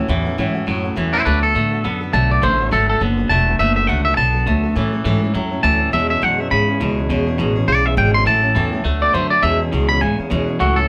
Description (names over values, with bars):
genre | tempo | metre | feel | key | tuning
rockabilly | 206 BPM | 4/4 | swing 59% on 8ths | A major | A4 = 439 Hz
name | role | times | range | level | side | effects
picked steel-string acoustic guitar | accompaniment | 0.0-10.9 s | A2 to A4 | -27 LUFS | equal | none
twangy electric guitar | riff | 0.0-10.9 s | E2 to B3 | -25 LUFS | equal | none
upright bass | bass | 0.0-10.9 s | E1 to A2 | -22 LUFS | equal | none
twangy electric guitar | melody | 1.1-10.9 s | D4 to C6 | -20 LUFS | equal | none
room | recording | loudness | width
moderate studio ambience, RT60 0.5 s | band playing live in one room | -17 LUFS | mono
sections
0.0-10.6 A section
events
clean electric guitar solo 0.0-10.6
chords
0.0 A6; 1.3 D6; 4.8 A6; 5.9 E6; 8.3 A6; 8.8 D6; 9.4 E6